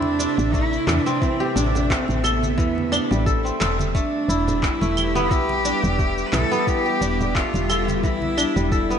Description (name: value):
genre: organic downtempo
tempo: 88 BPM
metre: 4/4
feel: swing 55% on 16ths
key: A minor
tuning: A4 = 440 Hz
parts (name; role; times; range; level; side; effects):
- rich cello; melody; 0.0-9.0 s; B3 to B4; -24 LUFS; right 1 dB; digital delay, slapback echo
- bowed-like drone; sustained chords; 0.0-9.0 s; C3 to E5; -29 LUFS; equal; built-in reverb, sidechain pumping
- kora; arpeggios; 0.0-9.0 s; E3 to A4; -24 LUFS; left 1 dB; digital delay, slapback echo
- woody FM bass; bass; 0.0-9.0 s; E1 to E2; -24 LUFS; equal; sidechain pumping
- congas; percussion; 0.0-8.3 s; none; -33 LUFS; right 2 dB; none
- electronic shaker, handclaps and claves; drums; 0.2-9.0 s; none; -28 LUFS; right 1 dB; none
- electronic kick drum; drums; 0.5-8.9 s; none; -24 LUFS; equal; none
room: moderate concert hall reverb, RT60 2.0 s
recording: big arena sound, nothing above 10.7 kHz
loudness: -18 LUFS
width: side -8 dB against mid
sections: 0.0-9.0 A section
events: none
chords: 0.0 Am; 3.9 Em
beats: 0.53 | 1.22 1.90 2.58 3.26 | 3.94 4.62 5.31 5.99 | 6.67 7.35 8.03 8.71